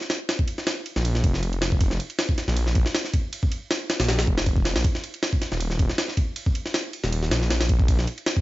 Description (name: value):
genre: drum and bass, jungle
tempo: 158 BPM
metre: 4/4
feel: swing 54% on 16ths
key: unclear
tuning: A4 = 443 Hz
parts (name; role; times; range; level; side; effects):
- jungle sampler-style drum kit; drums; 0.0-8.4 s; kick drum, ride cymbal, snare drum; -23 LUFS; equal; none
- detuned saw bass; bass; 1.0-8.1 s; Eb1 to Bb1; -24 LUFS; equal; none
room: digital ambience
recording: vinyl crackle, nothing above 7.6 kHz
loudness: -22 LUFS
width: side -18 dB against mid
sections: 0.0-4.8 A section; 4.8-8.4 A section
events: drop 0.0-4.8, 4.8-8.4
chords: none